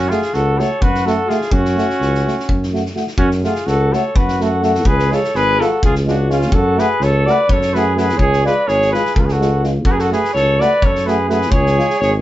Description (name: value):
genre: balkan folk, Balkan brass band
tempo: 252 BPM (eighths)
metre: 7/8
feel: straight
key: F# harmonic minor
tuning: A4 = 439 Hz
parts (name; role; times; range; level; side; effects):
- warm flugelhorn; melody; 0.0-12.1 s; E#4 to D5; -18 LUFS; left 1 dB; none
- clear flugelhorn; second line; 0.0-12.1 s; C#4 to B4; -21 LUFS; right 2 dB; none
- mellow tuba; bass; 0.0-12.2 s; G#1 to F#2; -18 LUFS; equal; none
- warm euphonium; accompaniment; 0.1-11.9 s; E#4 to F#4; -24 LUFS; left 5 dB; none
- warm trombone; accompaniment; 0.1-11.9 s; G#3 to A3; -22 LUFS; right 3 dB; none
- loose indie drum kit; percussion; 0.1-12.1 s; kick drum, snare drum; -20 LUFS; equal; none
room: wet small room ambience, RT60 0.5 s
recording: heard from further back in the room, nothing above 7.6 kHz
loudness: -13 LUFS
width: side -14 dB against mid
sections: 0.0-3.2 A section; 3.2-12.2 A section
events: none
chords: 0.0 F#m; 4.8 C#; 6.5 F#m; 8.2 C#; 9.8 F#m; 11.5 C#